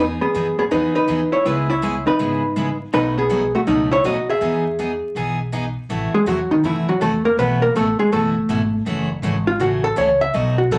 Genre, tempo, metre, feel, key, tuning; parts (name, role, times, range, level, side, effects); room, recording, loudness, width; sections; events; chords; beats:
country, western swing; 162 BPM; 4/4; swing 64% on 8ths; E major; A4 = 440 Hz
vintage hollow-body jazz guitar; melody; 0.0-10.8 s; D#3 to E5; -20 LUFS; equal
picked steel-string acoustic guitar; accompaniment; 0.0-10.8 s; B2 to G#4; -27 LUFS; equal
upright bass; bass; 0.0-10.8 s; F#1 to B2; -29 LUFS; equal
wet club reverb, RT60 0.6 s; vinyl crackle; -19 LUFS; mono
0.0-5.9 A section; 5.9-10.8 B section
hollow-body jazz guitar solo 5.9-10.8
0.0 Emaj9; 1.5 C#m7; 2.9 B7; 4.4 Emaj7; 5.9 Am6; 7.4 B7sus4; 8.9 F#m7
0.34 0.71 1.08 | 1.45 1.82 2.19 2.56 | 2.93 3.30 3.67 4.04 | 4.41 4.78 5.16 5.53 | 5.89 6.26 6.64 7.01 | 7.38 7.75 8.12 8.49 | 8.86 9.23 9.60 9.97 | 10.34 10.71